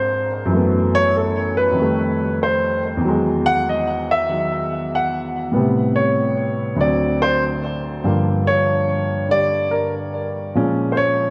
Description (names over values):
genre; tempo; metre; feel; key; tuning
jazz; 96 BPM; 4/4; swing 66% on 8ths; unclear; A4 = 439 Hz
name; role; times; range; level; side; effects
warm grand piano; solo; 0.0-11.3 s; D2 to F#5; -19 LUFS; equal; diffuse ambient delay
room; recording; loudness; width
wet church reverb, RT60 4.0 s; dreamy mix soaked in reverb; -19 LUFS; mono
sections
0.0-11.3 A section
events
grand piano solo 0.0-11.3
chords
0.0 Ab69; 0.5 Gbm7; 1.8 F9; 3.0 Emaj9; 5.5 Am9; 6.8 D7; 8.0 Gm7; 10.5 Bbm7